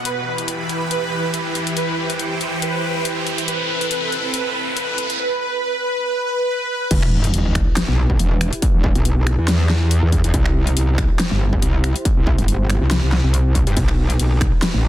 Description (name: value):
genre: heavy wobble dubstep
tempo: 140 BPM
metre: 4/4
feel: swing 55% on 16ths, half-time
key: E harmonic minor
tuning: A4 = 440 Hz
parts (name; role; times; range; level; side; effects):
- supersaw pad; sustained chords; 0.0-14.9 s; E3 to B5; -27 LUFS; right 1 dB; sidechain pumping, low-pass filter
- riser and sub drop; sound effects; 0.0-8.6 s; none; -25 LUFS; equal; none
- soft supersaw; melody; 0.1-6.9 s; B4; -23 LUFS; right 1 dB; lush chorus, digital delay
- dubstep drum kit; drums; 0.1-14.7 s; crash cymbal, finger snaps, hi-hat, ride cymbal, snare drum; -24 LUFS; left 1 dB; none
- metallic wobble bass; bass; 6.9-14.5 s; E1 to G2; -17 LUFS; equal; distortion, chorus, overdrive
- electronic kick drum; drums; 6.9-14.5 s; none; -19 LUFS; equal; distortion
- metallic wobble bass; bass; 7.9-14.9 s; G1 to E2; -16 LUFS; equal; chorus, overdrive
room: digital ambience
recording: dense, heavily limited modern master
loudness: -16 LUFS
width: side -13 dB against mid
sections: 0.0-6.9 A section; 6.9-14.9 B section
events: build-up 0.0-6.9; riser 0.0-5.2; drop 6.9-14.9; impact 6.9-8.6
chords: 0.1 Em; 1.8 C/E; 3.5 Am; 5.2 N.C.; 6.9 Em; 10.3 C; 13.8 B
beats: | 0.05 0.48 0.91 1.34 | 1.77 2.19 2.62 3.05 | 3.48 3.91 4.34 4.77 | 5.20 5.62 6.05 6.48 | 6.91 7.34 7.77 8.20 | 8.62 9.05 9.48 9.91 | 10.34 10.77 11.20 11.62 | 12.05 12.48 12.91 13.34 | 13.77 14.20 14.62